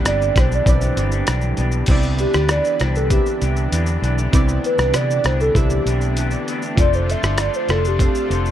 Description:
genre	indie pop, bedroom pop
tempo	98 BPM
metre	4/4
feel	straight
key	C major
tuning	A4 = 439 Hz
part	electric guitar through a small old amp	accompaniment	0.0-8.5 s	C3 to C5	-27 LUFS	left 4 dB	wide subtle chorus, vibrato effect
part	warm analog keys	accompaniment	0.0-8.5 s	C4 to E5	-28 LUFS	right 5 dB	chorus, cassette tape
part	lush unison pad	sustained chords	0.0-8.5 s	D3 to B4	-28 LUFS	right 1 dB	chorus
part	vintage muted fingered electric bass	bass	0.0-8.5 s	F1 to C3	-20 LUFS	equal	none
part	hollow clarinet-like synth lead	melody	0.1-8.5 s	G4 to E5	-21 LUFS	right 1 dB	wide subtle chorus, tape echo
part	dusty soul sampler-style drum kit	drums	0.1-8.5 s	crash cymbal, hi-hat, kick drum, rim click, shaker	-20 LUFS	equal	none
room	light reverb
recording	dark, warm production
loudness	-16 LUFS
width	side -11 dB against mid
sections	0.0-1.9 A section; 1.9-8.5 B section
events	soft synth lead solo 1.9-8.5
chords	0.0 Cmaj9; 6.8 F6

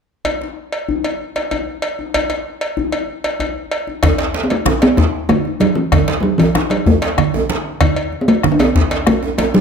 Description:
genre	west african traditional, West African drum ensemble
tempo	127 BPM (dotted quarters)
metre	12/8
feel	straight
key	unclear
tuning	A4 = 445 Hz
part	cowbell	percussion	0.2-9.5 s	none	-22 LUFS	right 1 dB	none
part	djembe	percussion	0.2-9.5 s	none	-24 LUFS	left 6 dB	none
part	bombo	percussion	4.0-9.2 s	none	-18 LUFS	left 3 dB	none
part	congas	percussion	4.0-9.5 s	none	-21 LUFS	right 11 dB	none
part	djembe	percussion	4.0-9.6 s	none	-21 LUFS	right 4 dB	none
part	talking drum	melody	4.4-9.6 s	E3 to D4	-15 LUFS	equal	tape echo
room	light reverb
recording	close, detailed microphones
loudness	-14 LUFS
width	side -6 dB against mid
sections	0.3-4.0 A section; 4.0-9.6 B section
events	none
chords	none

